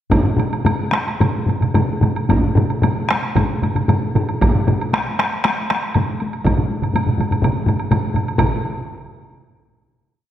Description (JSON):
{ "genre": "japanese traditional, taiko drum ensemble", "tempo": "109-136 BPM", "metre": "4/4", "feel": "straight", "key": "none", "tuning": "none", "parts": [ { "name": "solo taiko drums", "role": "percussion", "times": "0.1-8.6 s", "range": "none", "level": "-24 LUFS", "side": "left 3 dB", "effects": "none" }, { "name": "solo taiko drums", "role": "percussion", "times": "0.1-8.8 s", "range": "none", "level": "-20 LUFS", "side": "left 2 dB", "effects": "none" }, { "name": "taiko ensemble", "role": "percussion", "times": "0.1-8.8 s", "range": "none", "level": "-22 LUFS", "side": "right 4 dB", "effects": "none" }, { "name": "taiko ensemble", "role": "percussion", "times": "0.1-8.6 s", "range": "none", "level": "-22 LUFS", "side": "right 1 dB", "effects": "none" }, { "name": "woodblock", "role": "percussion", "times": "0.1-8.6 s", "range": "none", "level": "-27 LUFS", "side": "right 3 dB", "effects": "none" } ], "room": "wet scoring stage reverb, RT60 1.7 s", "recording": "none", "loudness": "-16 LUFS", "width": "side -11 dB against mid", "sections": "0.1-8.4 A section; 8.4-10.2 final hit", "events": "speeding up 0.1-10.2", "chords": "none" }